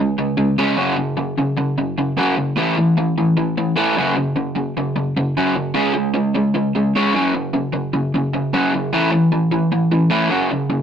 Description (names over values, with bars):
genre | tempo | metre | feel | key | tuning
punk | 151 BPM | 4/4 | straight | unclear | A4 = 440 Hz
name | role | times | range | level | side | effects
crunchy overdriven guitar | solo | 0.0-10.8 s | F#2 to C#4 | -16 LUFS | equal | none
room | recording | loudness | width
moderate studio reverb, RT60 0.7 s | rough rehearsal-room recording | -16 LUFS | side -8 dB against mid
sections
0.0-10.8 A section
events
none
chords
0.0 C#5; 0.8 F#5; 2.6 A5; 4.0 F#5; 5.7 C#5; 7.1 F#5; 8.9 A5; 10.3 F#5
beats
0.17 0.57 | 0.97 1.37 1.77 2.17 | 2.56 2.96 3.36 3.76 | 4.16 4.55 4.95 5.35 | 5.75 6.15 6.54 6.94 | 7.34 7.74 8.13 8.53 | 8.93 9.32 9.72 10.12 | 10.51